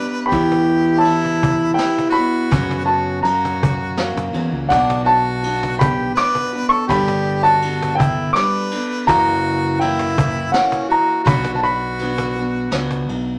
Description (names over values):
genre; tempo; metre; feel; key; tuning
acoustic folk duo or small band; 82 BPM; 3/4; straight; B minor; A4 = 440 Hz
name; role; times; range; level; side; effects
dark upright piano; melody; 0.0-13.0 s; F#5 to D6; -21 LUFS; equal; none
clear harmonica; second line; 0.0-13.0 s; C#4 to B4; -26 LUFS; equal; none
picked steel-string acoustic guitar; accompaniment; 0.0-13.4 s; F#2 to A4; -24 LUFS; equal; none
fingered electric bass; bass; 0.3-13.4 s; F#1 to F#2; -27 LUFS; equal; none
vintage brush drum kit; drums; 0.3-13.3 s; kick drum, ride cymbal, snare drum; -33 LUFS; equal; none
cajon; percussion; 0.3-13.2 s; none; -24 LUFS; equal; none
room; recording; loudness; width
wet small room reverb, RT60 0.5 s; none; -18 LUFS; mono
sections
0.0-13.4 A section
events
none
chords
0.3 Em; 2.5 F#sus4; 3.2 F#; 4.7 Bm; 6.9 Gadd9; 9.1 F#7; 11.3 Bmadd9